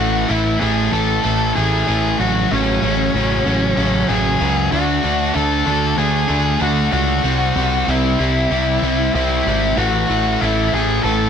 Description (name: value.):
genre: post-rock.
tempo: 95 BPM.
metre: 4/4.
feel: straight.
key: unclear.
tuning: A4 = 436 Hz.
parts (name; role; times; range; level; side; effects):
octave-fuzz lead guitar; melody; 0.0-11.3 s; C#4 to A4; -20 LUFS; left 3 dB; distortion, slapback echo.
crunchy overdriven guitar; riff; 0.0-11.3 s; F#2 to D4; -18 LUFS; right 1 dB; none.
growling picked electric bass; bass; 0.0-11.3 s; G#1 to D2; -20 LUFS; right 1 dB; overdrive.
room: light reverb.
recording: none.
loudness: -15 LUFS.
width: side -7 dB against mid.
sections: 0.0-11.3 A section.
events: none.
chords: 0.0 A5; 2.2 F#m/A; 4.7 D; 7.3 C; 9.8 A5.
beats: 0.29 0.92 1.56 | 2.19 2.82 3.46 4.09 | 4.72 5.35 5.99 6.62 | 7.25 7.88 8.52 9.15 | 9.78 10.42 11.05.